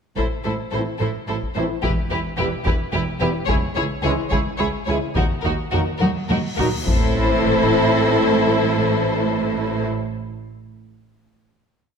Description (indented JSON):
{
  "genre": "cinematic, epic orchestral film score",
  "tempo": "72 BPM (dotted quarters)",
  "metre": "6/8",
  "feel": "straight",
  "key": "A minor",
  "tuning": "A4 = 440 Hz",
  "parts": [
    { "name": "warm symphonic violin section", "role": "melody", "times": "0.2-9.8 s", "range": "A#4 to C#5", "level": "-28 LUFS", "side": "left 7 dB", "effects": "none" },
    { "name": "rich symphonic violin section", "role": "second line", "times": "0.2-9.8 s", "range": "F#4 to A4", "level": "-26 LUFS", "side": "left 4 dB", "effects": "none" },
    { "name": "warm symphonic viola section", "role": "accompaniment", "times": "0.2-9.9 s", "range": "D#4 to E4", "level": "-27 LUFS", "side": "right 2 dB", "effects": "none" },
    { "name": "rich chamber double bass section", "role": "bass", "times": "0.2-9.9 s", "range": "E1 to D#2", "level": "-27 LUFS", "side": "right 5 dB", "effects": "none" },
    { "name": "rich studio cello section", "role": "bass", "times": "0.2-9.8 s", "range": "C#2 to A2", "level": "-26 LUFS", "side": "right 3 dB", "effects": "none" },
    { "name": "taiko ensemble", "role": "drums", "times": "0.2-7.9 s", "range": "none", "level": "-24 LUFS", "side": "left 1 dB", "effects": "none" },
    { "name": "clear trombone section", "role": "sustained chords", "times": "0.7-9.9 s", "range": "D#3 to A3", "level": "-28 LUFS", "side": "right 3 dB", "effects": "none" },
    { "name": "warm French horn section", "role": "sustained chords", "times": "0.7-9.9 s", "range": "A#3 to F#4", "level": "-27 LUFS", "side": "left 6 dB", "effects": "none" },
    { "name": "cymbal swell and sub drop", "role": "sound effects", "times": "6.2-8.5 s", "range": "none", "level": "-30 LUFS", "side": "left 1 dB", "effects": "none" }
  ],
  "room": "moderate scoring stage reverb, RT60 1.5 s",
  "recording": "none",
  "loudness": "-18 LUFS",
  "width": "side -6 dB against mid",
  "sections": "0.2-6.9 theme; 6.9-10.2 final chord",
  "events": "drum fill 6.0-6.9; cymbal swell 6.2-6.9; impact 6.9-8.5",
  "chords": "0.2 Am; 1.8 Em; 3.5 C#m; 5.2 D#m; 6.9 Am",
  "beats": "| 0.17 1.00 | 1.83 2.66 | 3.48 4.32 | 5.16 6.01 | 6.86 7.70 | 8.53 9.37"
}